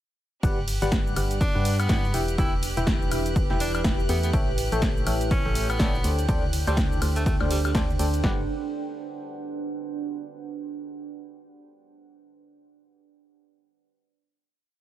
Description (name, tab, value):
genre	piano house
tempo	123 BPM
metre	4/4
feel	swing 59% on 16ths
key	G major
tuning	A4 = 440 Hz
part	clear studio violin section	sustained chords	0.4-8.2 s	G4 to F#6	-38 LUFS	equal	sidechain pumping
part	barking FM electric piano	riff	0.4-8.4 s	E3 to G5	-31 LUFS	left 1 dB	chorus, tremolo, sidechain pumping
part	organ-like FM bass	bass	0.4-8.5 s	E1 to G2	-27 LUFS	equal	sidechain pumping
part	punchy analog drum machine	drums	0.4-8.4 s	kick drum, snare drum	-25 LUFS	equal	overdrive
part	punchy analog drum machine	drums	0.4-8.2 s	cabasa, hi-hat, ride cymbal, snare drum, woodblock	-32 LUFS	equal	overdrive
part	deep dark ambient pad	texture	1.2-10.1 s	D4 to G5	-33 LUFS	right 3 dB	chorus, built-in reverb, sidechain pumping
part	edgy tenor saxophone	melody	1.4-7.7 s	G3 to E4	-33 LUFS	right 1 dB	tape echo
room	light reverb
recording	none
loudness	-22 LUFS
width	side -13 dB against mid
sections	0.4-8.2 drop; 8.2-10.2 final chord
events	drop 0.4-8.2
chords	0.4 Gmaj7; 2.1 Em; 4.3 A7; 6.0 D7sus4; 8.2 Gmaj7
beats	| 0.43 0.92 1.41 1.90 | 2.38 2.87 3.36 3.85 | 4.33 4.82 5.31 5.80 | 6.29 6.77 7.26 7.75 | 8.24 8.72 9.21 9.70